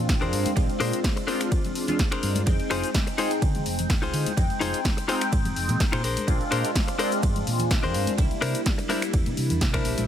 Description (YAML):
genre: filtered disco house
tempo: 126 BPM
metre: 4/4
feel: swing 54% on 16ths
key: F dorian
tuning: A4 = 440 Hz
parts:
  - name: funky polysynth comp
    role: accompaniment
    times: 0.0-10.1 s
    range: G3 to G5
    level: -28 LUFS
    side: equal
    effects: chorus, phaser, sidechain pumping
  - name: hollow-body short-scale fingered electric bass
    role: bass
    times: 0.0-10.1 s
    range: F1 to D3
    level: -28 LUFS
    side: equal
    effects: sidechain pumping
  - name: electronic kick drum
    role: drums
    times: 0.1-9.8 s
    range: none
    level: -24 LUFS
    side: equal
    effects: overdrive
  - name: punchy analog drum machine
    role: drums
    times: 0.1-10.1 s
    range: finger snaps, hi-hat, ride cymbal, snare drum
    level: -31 LUFS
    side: equal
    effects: overdrive, sidechain pumping on hats, sidechain pumping on cymbals
  - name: tube shaker and congas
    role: percussion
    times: 0.1-10.1 s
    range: none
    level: -36 LUFS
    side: left 3 dB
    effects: sidechain pumping on perc
  - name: direct-recorded clean electric guitar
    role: riff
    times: 0.2-10.0 s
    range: D4 to C5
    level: -29 LUFS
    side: left 4 dB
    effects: sidechain pumping
room: light reverb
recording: none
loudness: -22 LUFS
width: side -10 dB against mid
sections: 0.0-10.1 A section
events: drop 0.0-10.1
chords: 0.0 Bb9; 2.5 Fm7; 6.0 Bb9; 8.2 C9